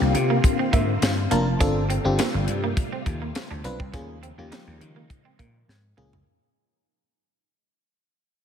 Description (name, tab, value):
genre	early-eighties boogie funk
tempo	103 BPM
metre	4/4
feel	straight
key	unclear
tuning	A4 = 440 Hz
part	FM electric piano	accompaniment	0.0-6.1 s	Bb3 to A5	-27 LUFS	left 1 dB	chorus, slapback echo
part	soft string machine	sustained chords	0.0-6.2 s	C3 to F4	-29 LUFS	left 3 dB	phaser, ensemble chorus
part	vintage slap bass	bass	0.0-6.2 s	F1 to Eb3	-26 LUFS	equal	none
part	electric guitar at the edge of break-up	riff	0.1-6.1 s	Bb3 to D4	-31 LUFS	right 6 dB	wide subtle chorus, slapback echo
part	tight funk drum kit	drums	0.1-6.3 s	handclaps, hi-hat, kick drum, snare drum, toms	-25 LUFS	equal	none
room	moderate lush hall reverb, RT60 2.4 s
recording	big arena sound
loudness	-21 LUFS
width	side -8 dB against mid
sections	0.0-6.3 A section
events	fade-out 0.0-6.3; FM electric piano fill 0.4-1.6; drum fill 5.7-6.3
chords	0.0 C9sus4; 1.6 G9sus4; 3.9 Eb9sus4